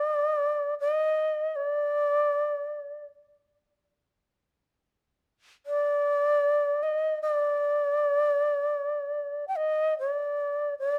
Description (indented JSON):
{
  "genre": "japanese traditional, Japanese chamber music",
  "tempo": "free time",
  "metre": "none",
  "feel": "none",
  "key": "unclear",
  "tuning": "A4 = 438 Hz",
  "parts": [
    { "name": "long shakuhachi", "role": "solo", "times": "0.0-11.0 s", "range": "D5 to G5", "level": "-27 LUFS", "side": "equal", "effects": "none" }
  ],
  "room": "light reverb",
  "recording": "close, detailed microphones",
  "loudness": "-27 LUFS",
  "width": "mono",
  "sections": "0.0-10.8 A section",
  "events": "none",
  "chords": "none"
}